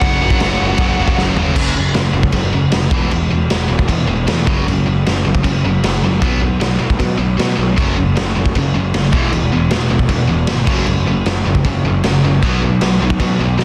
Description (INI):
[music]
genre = punk rock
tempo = 155 BPM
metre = 4/4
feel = straight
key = unclear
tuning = A4 = 440 Hz
[part]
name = smooth overdriven lead guitar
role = melody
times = 0.0-1.3 s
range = F#5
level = -22 LUFS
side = equal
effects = none
[part]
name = sludgy distorted guitar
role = riff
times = 0.0-1.6, 7.8-13.6 s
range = E2 to B3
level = -22 LUFS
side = equal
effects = overdrive
[part]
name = tight distorted guitar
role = riff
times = 0.0-13.6 s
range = E2 to B3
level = -22 LUFS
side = equal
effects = distortion
[part]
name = fuzz picked electric bass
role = bass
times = 0.0-13.6 s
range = E1 to B2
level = -21 LUFS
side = equal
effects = overdrive
[part]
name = raw garage drum kit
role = drums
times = 0.0-13.6 s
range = crash cymbal, kick drum, snare drum, toms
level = -19 LUFS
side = equal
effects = none
[sound]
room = little or no reverb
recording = dense, heavily limited modern master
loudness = -15 LUFS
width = mono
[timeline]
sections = 0.0-1.6 A section; 1.6-13.6 B section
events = drum fill 1.2-1.6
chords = 0.0 F#5; 2.9 E5; 4.5 F#5; 6.2 B5; 7.8 F#5; 9.1 E5; 10.7 F#5; 12.4 B5